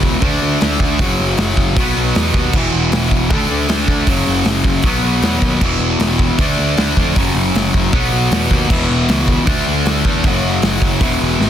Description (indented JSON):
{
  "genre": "punk rock",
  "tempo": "156 BPM",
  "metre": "4/4",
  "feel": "straight",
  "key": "unclear",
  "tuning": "A4 = 436 Hz",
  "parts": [
    { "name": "distorted electric guitar", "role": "riff", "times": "0.0-11.5 s", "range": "E2 to D4", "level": "-16 LUFS", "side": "equal", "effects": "overdrive" },
    { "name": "fuzz picked electric bass", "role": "bass", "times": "0.0-11.5 s", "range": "E1 to F2", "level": "-19 LUFS", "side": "equal", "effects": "overdrive" },
    { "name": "big rock drum kit", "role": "drums", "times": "0.0-11.5 s", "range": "crash cymbal, hi-hat, kick drum, snare drum", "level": "-18 LUFS", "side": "equal", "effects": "none" }
  ],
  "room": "little or no reverb",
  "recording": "dense, heavily limited modern master",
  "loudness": "-13 LUFS",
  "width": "side -10 dB against mid",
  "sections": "0.0-11.5 A section",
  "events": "none",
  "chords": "0.2 D5; 1.0 F#5; 1.8 B; 2.5 E5; 3.3 D5; 4.1 F#5; 4.8 B; 5.6 E5; 6.4 D5; 7.2 F#5; 7.9 B; 8.7 E5; 9.5 D5; 10.2 F#5",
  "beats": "0.22 0.61 | 0.99 1.38 1.76 2.15 | 2.54 2.92 3.31 3.69 | 4.08 4.46 4.85 5.23 | 5.62 6.00 6.39 6.78 | 7.16 7.55 7.93 8.32 | 8.70 9.09 9.47 9.86 | 10.24 10.63 11.01 11.40"
}